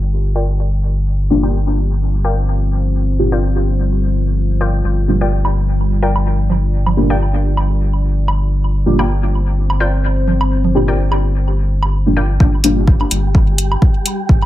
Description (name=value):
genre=dub techno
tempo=127 BPM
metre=4/4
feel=swing 56% on 16ths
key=G minor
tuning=A4 = 440 Hz
part: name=deep dark ambient pad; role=sustained chords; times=0.0-12.4 s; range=G3 to D5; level=-25 LUFS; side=left 2 dB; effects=chorus, built-in reverb, sidechain pumping
part: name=warm sub bass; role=bass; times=0.0-14.5 s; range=G1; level=-16 LUFS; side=equal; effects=sidechain pumping
part: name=warbly dusty pluck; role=riff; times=0.4-12.3 s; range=F4 to G5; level=-24 LUFS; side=left 2 dB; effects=chorus, sidechain pumping, dub echo
part: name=deep mellow chord stab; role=stabs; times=1.3-12.8 s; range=Bb3 to G4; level=-19 LUFS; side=equal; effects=chorus, phaser, sidechain pumping, dub echo
part: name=woodblock and congas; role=percussion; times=5.4-14.5 s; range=none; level=-23 LUFS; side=right 4 dB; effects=overdrive, sidechain pumping on perc, dub echo
part: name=electronic kick drum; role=drums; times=12.4-14.4 s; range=none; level=-11 LUFS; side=equal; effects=none
part: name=wind-like tuned noise texture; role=texture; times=12.8-14.5 s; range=G3 to G4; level=-25 LUFS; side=equal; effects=built-in reverb, sidechain pumping
part: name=electronic hi-hat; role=drums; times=12.6-14.2 s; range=none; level=-17 LUFS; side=left 2 dB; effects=low-pass filter on hats, low-pass filter on room
room=digital ambience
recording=low-pass filter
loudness=-13 LUFS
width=side -14 dB against mid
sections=0.0-12.4 A section; 12.4-14.5 B section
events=filter sweep on ambient pad 0.0-12.4; filter sweep 0.0-12.4; filter sweep on synth stab 12.4-14.5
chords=0.0 Gm7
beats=0.12 0.59 | 1.06 1.54 2.01 2.48 | 2.95 3.43 3.90 4.37 | 4.84 5.32 5.79 6.26 | 6.73 7.21 7.68 8.15 | 8.62 9.10 9.57 10.04 | 10.51 10.98 11.46 11.93 | 12.40 12.88 13.35 13.82 | 14.29